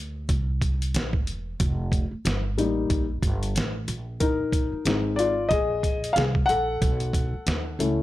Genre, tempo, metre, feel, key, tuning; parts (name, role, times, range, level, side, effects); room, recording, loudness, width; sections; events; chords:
hip hop, jazz-hop; 92 BPM; 4/4; swing 59% on 16ths; A4 = 440 Hz
upright bass; bass; 0.0-8.0 s; E1 to D#2; -28 LUFS; right 1 dB
trip hop sampler-style drum kit; drums; 0.3-8.0 s; hi-hat, kick drum, snare drum; -26 LUFS; right 1 dB
dark concert grand piano; accompaniment; 2.6-8.0 s; G3 to F#5; -24 LUFS; left 3 dB
small room reverb; -23 LUFS; side -15 dB against mid
0.0-8.0 A section
grand piano solo 0.0-8.0
0.0 C7sus2; 1.6 F9sus4; 3.9 Bb9sus4; 6.8 B9sus4